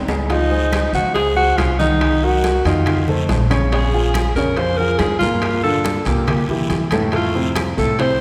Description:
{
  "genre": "Afro-Cuban jazz",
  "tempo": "140 BPM",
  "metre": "4/4",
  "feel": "straight",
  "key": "Db major",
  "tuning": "A4 = 440 Hz",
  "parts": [
    { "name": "breathy alto saxophone", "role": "melody", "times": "0.0-8.2 s", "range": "Eb4 to C5", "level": "-22 LUFS", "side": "equal", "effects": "none" },
    { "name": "upright bass", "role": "bass", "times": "0.0-8.2 s", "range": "Bb1 to G2", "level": "-23 LUFS", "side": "equal", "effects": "none" },
    { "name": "warm baby grand piano", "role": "accompaniment", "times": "0.1-8.2 s", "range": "A2 to F5", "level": "-23 LUFS", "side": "equal", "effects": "none" },
    { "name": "claves", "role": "percussion", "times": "0.1-7.8 s", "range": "none", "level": "-40 LUFS", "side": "equal", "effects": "none" },
    { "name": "congas", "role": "percussion", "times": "0.1-8.2 s", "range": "none", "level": "-29 LUFS", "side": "equal", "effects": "none" },
    { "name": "guiro", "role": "percussion", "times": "0.1-8.2 s", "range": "none", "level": "-37 LUFS", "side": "equal", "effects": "none" },
    { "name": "timbales", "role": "percussion", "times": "0.1-8.2 s", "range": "none", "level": "-31 LUFS", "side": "equal", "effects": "none" },
    { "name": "bongos", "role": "percussion", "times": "0.3-8.2 s", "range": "none", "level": "-33 LUFS", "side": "equal", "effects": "none" }
  ],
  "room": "wet concert hall reverb, RT60 2.4 s",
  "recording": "recorded in a church or concert hall",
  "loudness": "-17 LUFS",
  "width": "mono",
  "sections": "0.3-8.2 A section",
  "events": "drum fill 0.0, 6.7-7.1",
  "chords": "0.3 Dbmaj9; 2.0 Cm7b5; 2.9 F7; 3.7 Bbm7; 5.4 Gm9; 6.3 C7; 7.1 Fmaj7"
}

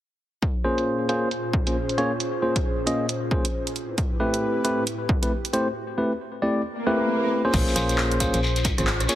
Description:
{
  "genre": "UK garage, two-step garage",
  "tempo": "135 BPM",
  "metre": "4/4",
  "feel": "swing 61% on 16ths",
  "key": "unclear",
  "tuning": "A4 = 442 Hz",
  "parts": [
    { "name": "airy breathy pad", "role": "sustained chords", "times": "0.4-9.2 s", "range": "A2 to C5", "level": "-31 LUFS", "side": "equal", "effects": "chorus, sidechain pumping" },
    { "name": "electronic kick drum", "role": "drums", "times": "0.4-8.8 s", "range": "none", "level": "-25 LUFS", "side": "equal", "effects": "overdrive" },
    { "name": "house drum kit", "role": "drums", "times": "0.4-9.2 s", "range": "crash cymbal, handclaps, hi-hat, rim click", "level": "-28 LUFS", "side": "right 2 dB", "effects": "overdrive, low-pass filter on hats, low-pass filter on cymbals, low-pass filter on snare, low-pass filter on room" },
    { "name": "bright tine electric piano", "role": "stabs", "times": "0.6-9.2 s", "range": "A3 to Eb5", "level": "-24 LUFS", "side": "equal", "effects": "low-pass filter, ping-pong delay" },
    { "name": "swell", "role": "sound effects", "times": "6.7-7.5 s", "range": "none", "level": "-29 LUFS", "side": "left 2 dB", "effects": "none" },
    { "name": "organ-like FM bass", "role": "bass", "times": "7.5-9.1 s", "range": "Ab1 to Bb1", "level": "-26 LUFS", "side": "equal", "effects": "none" },
    { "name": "shekere", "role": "percussion", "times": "7.5-9.2 s", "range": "none", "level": "-30 LUFS", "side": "left 3 dB", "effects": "none" }
  ],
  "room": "light reverb, digital ambience",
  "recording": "heavily compressed radio sound, multiband compression",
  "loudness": "-22 LUFS",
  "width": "side -13 dB against mid",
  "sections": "0.4-7.5 A section; 7.5-9.2 B section",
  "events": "swell 6.7-7.5",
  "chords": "0.4 Bbm9; 3.8 Am9; 7.5 Bbm9"
}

